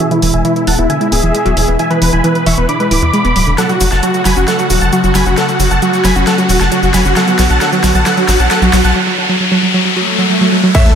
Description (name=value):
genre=uplifting trance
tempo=134 BPM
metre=4/4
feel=straight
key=unclear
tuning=A4 = 440 Hz
part: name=dense compressed supersaw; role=melody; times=0.0-10.9 s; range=E4 to D6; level=-15 LUFS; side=equal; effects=sidechain pumping, low-pass filter, dub echo
part: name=analog string pad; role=sustained chords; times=0.0-11.0 s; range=B2 to F#4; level=-20 LUFS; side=left 2 dB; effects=ensemble chorus, vintage 12-bit sampler grit, sidechain pumping
part: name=analog pluck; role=arpeggios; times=0.0-10.9 s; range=E2 to C#4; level=-15 LUFS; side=right 2 dB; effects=chorus, sidechain pumping, dub echo
part: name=big-room dance drum kit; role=drums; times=0.0-10.9 s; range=crash cymbal, hi-hat, shaker, snare drum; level=-20 LUFS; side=equal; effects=overdrive, high-pass filter on hats, high-pass filter on snare, high-pass filter on perc, high-pass filter on cymbals
part: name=riser, swell and impact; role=sound effects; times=0.3-11.0 s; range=none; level=-19 LUFS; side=left 2 dB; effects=none
part: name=tight sequencer bass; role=bass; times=0.2-8.9 s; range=D1 to E2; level=-14 LUFS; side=left 1 dB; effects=sidechain pumping
part: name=electronic kick drum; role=drums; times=10.7-10.8 s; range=none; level=-8 LUFS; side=equal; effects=overdrive
part: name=dark concert grand piano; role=second line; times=10.8-10.9 s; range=A4 to E5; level=-17 LUFS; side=right 2 dB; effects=sidechain pumping
room=moderate lush hall reverb, RT60 2.0 s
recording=none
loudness=-9 LUFS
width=side -8 dB against mid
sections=0.0-10.7 A section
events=build-up 0.0-10.7; filter sweep on supersaw synth 0.0-10.7; filter sweep on synth pluck 0.0-10.7; riser 0.3-10.7; drum fill 3.6-9.0; swell 9.9-10.7; impact 10.7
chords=0.0 E; 3.6 F#m; 7.2 Bm